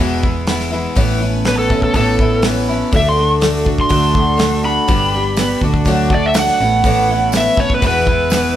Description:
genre	folk rock and heartland rock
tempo	122 BPM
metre	4/4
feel	straight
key	A major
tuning	A4 = 441 Hz
part	picked twelve-string acoustic guitar	accompaniment	0.0-8.6 s	E2 to G4	-20 LUFS	left 3 dB	none
part	pedal harmonium	sustained chords	0.0-8.6 s	F#4 to B5	-28 LUFS	right 1 dB	none
part	electric guitar through a small old amp	riff	0.0-8.6 s	E2 to F#4	-21 LUFS	right 2 dB	none
part	hollow-body short-scale fingered electric bass	bass	0.0-8.6 s	E1 to D2	-20 LUFS	equal	none
part	damped 70s drum kit	drums	0.2-8.4 s	hi-hat, kick drum, snare drum	-19 LUFS	equal	none
part	overdriven slide guitar	melody	1.5-8.6 s	A4 to C6	-16 LUFS	right 1 dB	none
part	tambourine	percussion	5.4-8.4 s	none	-31 LUFS	right 5 dB	none
room	light reverb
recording	band playing live in one room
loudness	-12 LUFS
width	side -11 dB against mid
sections	0.0-8.6 A section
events	electric slide guitar solo 0.0-8.6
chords	0.0 E; 1.0 Aadd9; 2.9 D; 4.9 G; 5.6 D; 6.6 Aadd9; 7.8 E

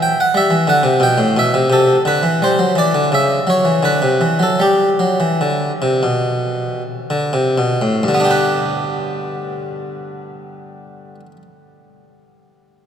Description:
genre	classical, baroque-style suite movement for harpsichord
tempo	65-91 BPM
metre	4/4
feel	rubato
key	G major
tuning	A4 = 440 Hz
part	harpsichord	solo	0.0-11.4 s	G2 to G5	-14 LUFS	equal	none
room	wet cathedral reverb, RT60 5.4 s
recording	none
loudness	-13 LUFS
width	side -8 dB against mid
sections	0.0-8.0 A section; 8.0-11.6 B section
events	slowing down 0.4-8.0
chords	0.0 Em; 1.7 Cmaj13; 3.1 C#madd11; 3.8 D7; 4.6 G

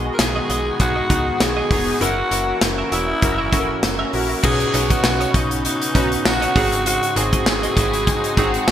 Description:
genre	1980s-style pop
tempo	99 BPM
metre	4/4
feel	swing 55% on 16ths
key	B major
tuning	A4 = 440 Hz
part	warm analog keys	accompaniment	0.0-8.7 s	G#2 to B4	-25 LUFS	equal	chorus
part	brassy analog pad	sustained chords	0.0-8.7 s	C#3 to F#4	-27 LUFS	left 1 dB	chorus
part	direct-recorded clean electric guitar	riff	0.0-8.7 s	F#4 to E5	-29 LUFS	right 4 dB	analog chorus
part	slap-like FM bass	bass	0.0-8.7 s	E1 to C#2	-26 LUFS	equal	none
part	raspy alto saxophone	melody	0.1-8.7 s	D#4 to A#4	-22 LUFS	equal	none
part	modern studio drum kit	drums	0.2-8.7 s	crash cymbal, hi-hat, kick drum, snare drum, tambourine	-20 LUFS	equal	gated reverb
part	analog synth brass	stabs	0.8-8.7 s	B3 to A#4	-28 LUFS	equal	chorus, digital delay
part	warm studio violin section	second line	7.8-8.7 s	D#4 to G#4	-27 LUFS	left 1 dB	none
room	moderate lush hall reverb, RT60 1.6 s, small room ambience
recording	bright 1980s-style digital production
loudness	-16 LUFS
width	side -10 dB against mid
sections	0.0-4.4 A section; 4.4-8.7 B section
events	none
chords	0.0 B6; 2.0 F#7; 4.4 Badd9; 6.6 G#7

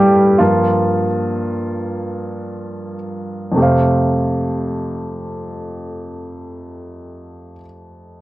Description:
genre	pop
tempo	34-43 BPM (dotted quarters)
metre	6/8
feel	straight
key	F major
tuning	A4 = 441 Hz
part	clear baby grand piano	accompaniment	0.0-8.2 s	F2 to F5	-16 LUFS	equal	cassette tape
room	moderate studio reverb, RT60 0.6 s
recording	home recording on cassette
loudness	-15 LUFS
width	side -17 dB against mid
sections	0.0-3.6 A section; 3.6-7.1 B section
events	slowing down 0.0-3.6; grand piano solo 0.0-3.6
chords	0.4 Gm7; 3.6 Fadd9

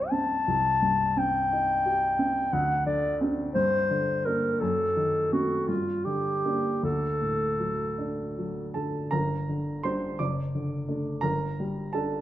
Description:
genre	classical, romantic duo for clarinet and grand piano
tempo	51-60 BPM (dotted quarters)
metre	6/8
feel	rubato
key	G minor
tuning	A4 = 440 Hz
part	mellow clarinet	melody	0.0-8.7 s	F4 to A5	-26 LUFS	left 1 dB	none
part	dark baby grand piano	accompaniment	0.0-12.2 s	F#1 to D6	-28 LUFS	equal	none
room	moderate recital hall reverb, RT60 1.4 s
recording	close, detailed microphones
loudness	-25 LUFS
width	side -13 dB against mid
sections	0.0-9.1 A section; 9.1-12.2 B section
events	none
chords	0.0 Cm; 2.5 D7; 3.6 Gm; 4.6 F#dim7; 5.7 Gm; 6.8 D; 9.1 Gm; 10.2 D/F#; 11.2 Gm

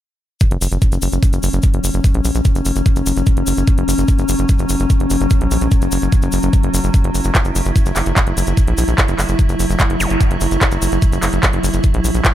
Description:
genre	psychedelic trance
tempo	147 BPM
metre	4/4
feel	straight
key	unclear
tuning	A4 = 437 Hz
part	evolving wavetable pad	sustained chords	0.7-12.3 s	F#3 to E4	-20 LUFS	left 1 dB	chorus, built-in reverb, sidechain pumping
part	drum and bass drum kit	drums	0.4-12.3 s	handclaps, hi-hat	-22 LUFS	right 1 dB	none
part	electronic kick drum	drums	0.4-12.3 s	none	-14 LUFS	equal	none
part	cabasa	percussion	0.4-12.3 s	none	-27 LUFS	left 4 dB	none
part	tight sequencer bass	bass	0.5-12.2 s	F#1 to A#1	-18 LUFS	equal	none
part	zap	sound effects	10.0-10.1 s	none	-24 LUFS	equal	none
room	little or no reverb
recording	none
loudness	-13 LUFS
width	side -12 dB against mid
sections	0.4-12.3 A section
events	none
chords	0.4 F#5

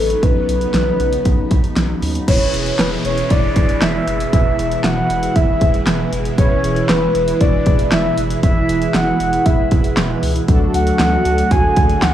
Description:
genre	synth-pop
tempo	117 BPM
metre	4/4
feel	straight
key	E mixolydian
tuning	A4 = 439 Hz
part	soft octave-layered synth lead	melody	0.0-12.1 s	A4 to G#5	-19 LUFS	equal	chorus, phaser, tape echo, shimmer reverb
part	string machine, violas	sustained chords	0.0-12.1 s	B2 to F#4	-21 LUFS	right 1 dB	ensemble chorus, shimmer reverb
part	round analog bass	bass	0.0-12.1 s	E1 to D#2	-23 LUFS	equal	none
part	pop drum kit	drums	0.1-12.1 s	crash cymbal, handclaps, hi-hat, kick drum, snare drum	-17 LUFS	equal	none
part	mellow synth brass	accompaniment	2.3-12.1 s	D4 to B4	-24 LUFS	equal	chorus, phaser, shimmer reverb
part	downlifter	sound effects	2.3-6.4 s	none	-29 LUFS	equal	none
room	light reverb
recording	dry, gritty hardware recording, studio reverb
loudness	-13 LUFS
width	side -11 dB against mid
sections	0.0-2.3 A section; 2.3-12.1 B section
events	none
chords	0.0 Badd9; 2.3 E; 10.5 D

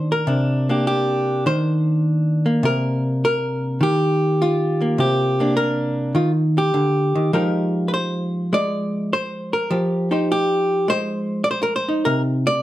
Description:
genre	solo jazz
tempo	102 BPM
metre	4/4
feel	swing 69% on 8ths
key	C minor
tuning	A4 = 441 Hz
part	hollow-body jazz guitar	solo	0.0-12.6 s	C3 to D5	-18 LUFS	equal	none
room	moderate studio reverb, RT60 0.8 s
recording	close, detailed microphones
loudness	-18 LUFS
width	side -14 dB against mid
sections	0.0-12.6 A section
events	none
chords	0.0 Cm9; 7.3 Fm9; 12.1 Cm9

